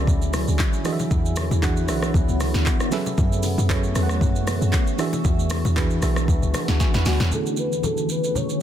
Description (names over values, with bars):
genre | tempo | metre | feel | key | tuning
amapiano | 116 BPM | 4/4 | swing 55% on 16ths | unclear | A4 = 440 Hz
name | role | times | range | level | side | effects
FM electric piano with tremolo | accompaniment | 0.0-8.6 s | D3 to C#6 | -27 LUFS | right 4 dB | low-pass filter
granular cloud pad | sustained chords | 0.0-8.6 s | D3 to G#4 | -28 LUFS | left 2 dB | built-in reverb, sidechain pumping, low-pass filter
deep log drum bass | bass | 0.0-7.3 s | B1 to F#2 | -22 LUFS | equal | none
deep house drum kit | drums | 0.1-8.6 s | handclaps, hi-hat, kick drum, rim click, shaker, snare drum | -24 LUFS | equal | soft clipping on snare
congas and bongos | percussion | 0.1-8.5 s | none | -32 LUFS | left 2 dB | none
warm velvety synth lead | melody | 7.1-8.6 s | F#4 to C#5 | -26 LUFS | left 2 dB | chorus, low-pass filter, digital delay
room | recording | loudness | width
digital ambience | dense, heavily limited modern master | -19 LUFS | side -10 dB against mid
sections
0.0-7.3 A section; 7.3-8.6 B section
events
drop 0.0-7.3; drum fill 6.8-7.3; filter sweep 7.3-8.6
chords
0.0 Dmaj9#11; 0.9 E9; 2.9 F#m11; 5.0 E9; 7.3 Dmaj9#11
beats
0.08 0.59 | 1.11 1.63 2.15 2.66 | 3.18 3.70 4.21 4.73 | 5.25 5.77 6.28 6.80 | 7.32 7.83 8.35